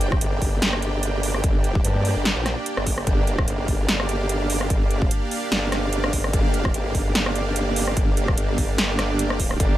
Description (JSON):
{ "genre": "heavy wobble dubstep", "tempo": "147 BPM", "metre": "4/4", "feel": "swing 55% on 16ths, half-time", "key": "G minor", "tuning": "A4 = 440 Hz", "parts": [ { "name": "supersaw pad", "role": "sustained chords", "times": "0.0-9.8 s", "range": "Bb3 to G5", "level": "-27 LUFS", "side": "right 2 dB", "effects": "sidechain pumping" }, { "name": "formant-sweep wobble bass", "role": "bass", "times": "0.0-9.8 s", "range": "G1 to G2", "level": "-24 LUFS", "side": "equal", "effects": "chorus, overdrive" }, { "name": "big-room dance drum kit", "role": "drums", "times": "0.0-9.7 s", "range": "hi-hat, rim click, snare drum", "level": "-25 LUFS", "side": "equal", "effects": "none" }, { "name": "electronic kick drum", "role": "drums", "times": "0.1-9.7 s", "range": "none", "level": "-22 LUFS", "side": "equal", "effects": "none" } ], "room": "little or no reverb", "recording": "none", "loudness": "-20 LUFS", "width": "side -14 dB against mid", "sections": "0.0-9.8 A section", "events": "none", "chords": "0.0 Gm" }